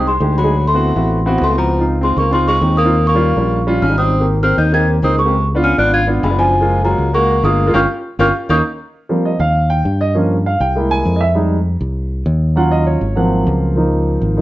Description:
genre	jazz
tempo	199 BPM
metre	4/4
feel	straight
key	unclear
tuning	A4 = 441 Hz
part	large celesta	melody	0.0-8.6 s	Ab5 to Ab6	-18 LUFS	right 1 dB	none
part	breathy tenor saxophone	second line	0.0-8.6 s	F3 to F4	-21 LUFS	left 3 dB	none
part	warm grand piano	accompaniment	0.0-14.4 s	F3 to Ab5	-17 LUFS	right 1 dB	none
part	fingered electric bass	bass	0.0-14.4 s	Gb1 to G2	-16 LUFS	equal	none
room	moderate studio reverb, RT60 0.8 s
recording	worn, warbling old tape, cassette tape, warbly pitch drift, nothing above 7.8 kHz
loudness	-12 LUFS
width	side -16 dB against mid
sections	0.0-8.9 A section; 8.9-14.4 B section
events	band accent 7.7-8.9; grand piano solo 8.9-14.4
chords	0.0 Fm7 (rootless); 0.5 D13; 1.7 Dbmaj7; 2.9 Eb7; 4.1 Abmaj7; 5.3 Db7b9; 6.5 Gbmaj9; 7.7 G7(b5, no3); 8.3 Eb7(no3); 8.9 Eb69; 10.2 Gm7b5; 10.8 C7b13; 11.4 Fm9; 12.6 Ebm9; 13.2 Ab13; 13.8 Db69

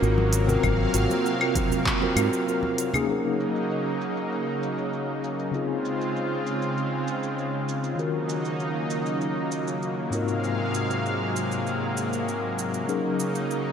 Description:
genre	sunset chillout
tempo	98 BPM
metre	4/4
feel	straight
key	Gb lydian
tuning	A4 = 439 Hz
part	mellow tine electric piano	accompaniment	0.0-13.7 s	Ab2 to Bb4	-28 LUFS	moving between left 4 dB and right 5 dB	medium stereo tremolo, auto-pan, low-pass filter, ping-pong delay
part	lush unison pad	sustained chords	0.0-13.7 s	C3 to F5	-28 LUFS	equal	chorus
part	mellow fretless electric bass	bass	0.0-2.3 s	Ab1 to Ab2	-23 LUFS	equal	tube saturation
part	deep house drum kit	drums	0.0-13.6 s	claves, handclaps, hi-hat, shaker	-31 LUFS	left 1 dB	low-pass filter on perc, low-pass filter on hats, low-pass filter on snare, low-pass filter on room, gated reverb
part	congas	percussion	0.2-3.1 s	none	-34 LUFS	right 3 dB	none
part	electronic kick drum	drums	0.6-2.0 s	none	-28 LUFS	equal	none
room	wet lush hall reverb, RT60 2.7 s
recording	bright 1980s-style digital production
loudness	-24 LUFS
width	side -8 dB against mid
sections	0.0-3.1 A section; 3.1-13.7 B section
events	filter sweep on tine electric piano 3.1-13.7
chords	0.0 Ab13; 3.1 Gb6; 5.5 Dbmaj7; 8.0 Ebm7; 10.1 Ab13; 12.9 Gb6

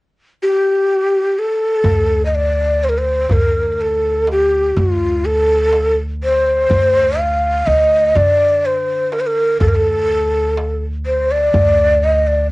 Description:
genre	Turkish makam ensemble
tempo	124 BPM (eighths)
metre	10/8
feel	straight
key	D makam kurdi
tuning	A4 = 440 Hz
part	breathy mellow ney	melody	0.4-12.5 s	F4 to F5	-14 LUFS	equal	cassette tape
part	upright bass	bass	1.8-12.5 s	D2 to D3	-21 LUFS	equal	none
part	darbuka	percussion	1.8-12.2 s	none	-20 LUFS	right 1 dB	none
room	moderate small room reverb, RT60 0.5 s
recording	home recording on cassette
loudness	-13 LUFS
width	side -21 dB against mid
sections	0.0-1.9 A section; 1.9-12.5 B section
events	none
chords	none

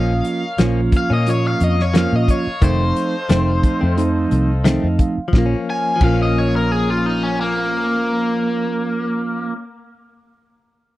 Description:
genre	straight-eighth soul blues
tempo	88 BPM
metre	4/4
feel	swing 53% on 16ths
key	Bb harmonic minor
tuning	A4 = 440 Hz
part	biting overdriven guitar	melody	0.0-9.5 s	Bb3 to Ab5	-22 LUFS	left 1 dB	spring reverb
part	mellow tine electric piano	accompaniment	0.0-9.5 s	F3 to F5	-22 LUFS	right 3 dB	none
part	warm horn section	sustained chords	0.0-8.8 s	A4 to F5	-34 LUFS	equal	none
part	direct-recorded clean electric guitar	stabs	0.0-9.6 s	Eb3 to Db4	-24 LUFS	left 5 dB	harmonic tremolo
part	vintage muted fingered electric bass	bass	0.0-9.5 s	F1 to Bb2	-19 LUFS	equal	none
part	warm soul drum kit	drums	0.2-6.2 s	crash cymbal, hi-hat, kick drum, snare drum	-16 LUFS	equal	none
room	little or no reverb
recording	none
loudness	-15 LUFS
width	side -16 dB against mid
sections	0.0-5.3 A section; 5.3-8.1 B section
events	overdriven electric guitar solo 0.0-5.3; tine electric piano fill 4.3-5.3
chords	0.0 Bbm; 2.6 F7; 5.3 Bbm

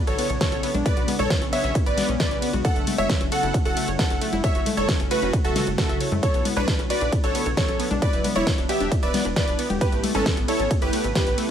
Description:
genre	uplifting trance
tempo	134 BPM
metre	4/4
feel	straight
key	B minor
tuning	A4 = 438 Hz
part	supersaw stab	melody	0.1-11.5 s	C#4 to F#5	-27 LUFS	right 1 dB	sidechain pumping, dub echo
part	warm grand piano	second line	0.1-11.5 s	A4 to F#5	-30 LUFS	equal	sidechain pumping, ping-pong delay
part	analog pluck	arpeggios	0.1-11.4 s	A3 to E5	-31 LUFS	left 2 dB	chorus, sidechain pumping, ping-pong delay
part	tight sequencer bass	bass	0.1-11.4 s	D1 to F#2	-30 LUFS	equal	sidechain pumping
part	big-room dance drum kit	drums	0.1-11.5 s	congas, hi-hat, ride cymbal, snare drum	-28 LUFS	left 1 dB	none
part	electronic kick drum	drums	0.4-11.2 s	none	-24 LUFS	equal	none
room	digital ambience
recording	none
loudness	-20 LUFS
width	side -9 dB against mid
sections	0.0-11.5 A section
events	none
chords	0.0 Bmadd9; 2.6 F#m7; 6.2 Bmadd9; 8.0 Em7; 9.8 Aadd9

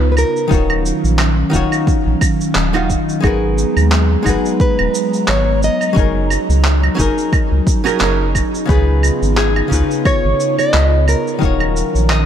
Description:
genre	sunset chillout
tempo	88 BPM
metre	4/4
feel	swing 56% on 16ths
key	F# major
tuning	A4 = 440 Hz
part	nylon-string guitar	melody	0.0-11.7 s	G#4 to D#5	-21 LUFS	left 1 dB	ping-pong delay
part	archtop guitar, miked and amplified	accompaniment	0.0-12.3 s	C#3 to E#5	-20 LUFS	moving between left 7 dB and right 6 dB	auto-pan, tape echo
part	airy breathy pad	sustained chords	0.0-12.3 s	C#3 to A#5	-21 LUFS	right 2 dB	chorus
part	round analog bass	bass	0.0-12.3 s	D#1 to D#2	-15 LUFS	equal	none
part	electronic claves, shaker and handclaps	drums	0.2-12.3 s	none	-21 LUFS	right 2 dB	none
part	electronic kick drum	drums	0.5-11.6 s	none	-17 LUFS	equal	overdrive
part	Celtic harp	arpeggios	8.7-12.3 s	G#4 to D#5	-22 LUFS	left 6 dB	tape echo
room	moderate lush hall reverb, RT60 1.8 s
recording	dark, warm production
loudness	-12 LUFS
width	side -9 dB against mid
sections	0.0-12.3 A section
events	none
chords	0.0 C#9; 0.5 D#m7; 3.2 G#m9; 6.0 F#6; 8.7 C#9; 11.4 D#m7

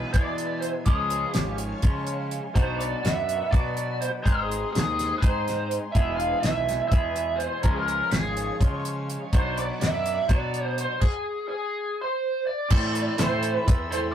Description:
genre	psychedelic rock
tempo	248 BPM (eighths)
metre	7/8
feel	straight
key	unclear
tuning	A4 = 440 Hz
part	lead guitar through a small cranked amp	melody	0.0-14.1 s	G#4 to F5	-27 LUFS	right 1 dB	wah, overdrive
part	phased string machine	sustained chords	0.0-14.1 s	A4 to E6	-39 LUFS	right 2 dB	ensemble chorus, phaser
part	twangy electric guitar	riff	0.0-14.1 s	E2 to A4	-31 LUFS	equal	none
part	fuzz fingered electric bass	bass	0.0-14.1 s	E1 to E3	-32 LUFS	equal	overdrive
part	tanpura	drone	0.0-4.3 s	none	barely audible	none	none
part	damped 70s drum kit	drums	0.1-14.0 s	crash cymbal, hi-hat, kick drum, snare drum	-23 LUFS	equal	none
room	moderate booth ambience, RT60 0.2 s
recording	rough rehearsal-room recording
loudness	-23 LUFS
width	side -10 dB against mid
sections	0.0-12.7 A section; 12.7-14.1 B section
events	stop 11.0-12.7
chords	0.0 E; 0.9 C#; 2.6 Bm; 4.3 G#; 5.9 E; 7.6 C#; 9.3 Bm; 11.0 N.C.; 12.7 Am

